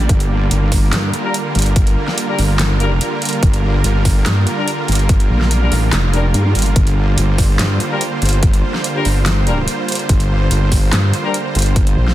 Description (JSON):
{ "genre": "heavy wobble dubstep", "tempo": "144 BPM", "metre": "4/4", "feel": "half-time", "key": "G minor", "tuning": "A4 = 440 Hz", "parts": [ { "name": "supersaw pad", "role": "sustained chords", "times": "0.0-12.1 s", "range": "D3 to C5", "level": "-21 LUFS", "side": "right 2 dB", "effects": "sidechain pumping" }, { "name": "vowel-sweep wobble bass", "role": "bass", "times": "0.0-0.1, 5.3-6.7, 12.0-12.1 s", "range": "G1 to G2", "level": "-14 LUFS", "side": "equal", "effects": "chorus, overdrive" }, { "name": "wobble bass", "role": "bass", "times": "0.1-12.0 s", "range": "F1 to G2", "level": "-15 LUFS", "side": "equal", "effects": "chorus, overdrive" }, { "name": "big-room dance drum kit", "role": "drums", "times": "0.1-12.1 s", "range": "handclaps, hi-hat, snare drum", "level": "-21 LUFS", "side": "equal", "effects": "overdrive" }, { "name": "electronic kick drum", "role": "drums", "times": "0.1-11.8 s", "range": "none", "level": "-15 LUFS", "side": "equal", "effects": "none" }, { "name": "warm brass ensemble", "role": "stabs", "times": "1.2-11.4 s", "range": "G3 to Bb4", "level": "-24 LUFS", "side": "left 4 dB", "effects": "digital delay" } ], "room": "light reverb, digital ambience", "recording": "dense, heavily limited modern master", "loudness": "-13 LUFS", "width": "side -14 dB against mid", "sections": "0.0-12.1 A section", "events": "none", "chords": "0.0 Gm" }